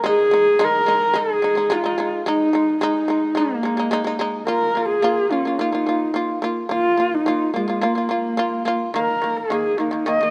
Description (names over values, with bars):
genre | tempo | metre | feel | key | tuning
mongolian traditional, Mongolian folk | 108 BPM | 4/4 | straight | unclear | A4 = 439 Hz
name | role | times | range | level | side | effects
shamisen | arpeggios | 0.0-10.3 s | Eb3 to F4 | -25 LUFS | equal | none
dark horsehead fiddle | melody | 0.1-10.3 s | Ab3 to Eb5 | -22 LUFS | equal | none
room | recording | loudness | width
moderate huge ambient reverb, RT60 4.4 s | none | -20 LUFS | mono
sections
0.0-4.5 A section; 4.5-10.3 B section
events
none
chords
0.0 Ab5; 4.5 Bb5; 9.0 Eb5